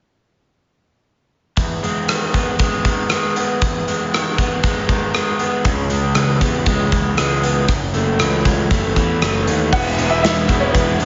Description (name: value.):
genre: indie rock.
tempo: 118 BPM.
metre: 4/4.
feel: straight.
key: E major.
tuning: A4 = 440 Hz.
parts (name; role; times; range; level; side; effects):
crunchy overdriven guitar; riff; 1.6-11.1 s; E2 to E4; -22 LUFS; equal; spring reverb.
big rock drum kit; drums; 1.6-11.1 s; crash cymbal, hi-hat, kick drum, rim click, snare drum; -22 LUFS; equal; none.
fuzz picked electric bass; bass; 5.6-11.1 s; E1 to E2; -22 LUFS; equal; overdrive.
clear upright piano; melody; 9.7-11.1 s; B4 to F#5; -23 LUFS; equal; none.
room: light reverb.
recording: nothing above 7.6 kHz.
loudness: -18 LUFS.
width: mono.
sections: 1.6-9.7 A section; 9.7-11.1 B section.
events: none.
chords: 1.6 Emaj7; 5.7 C#m7; 7.7 F#m7; 9.7 E.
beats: | 1.57 2.08 2.59 3.10 | 3.61 4.12 4.63 5.14 | 5.66 6.17 6.68 7.19 | 7.70 8.21 8.71 9.22 | 9.73 10.24 10.74.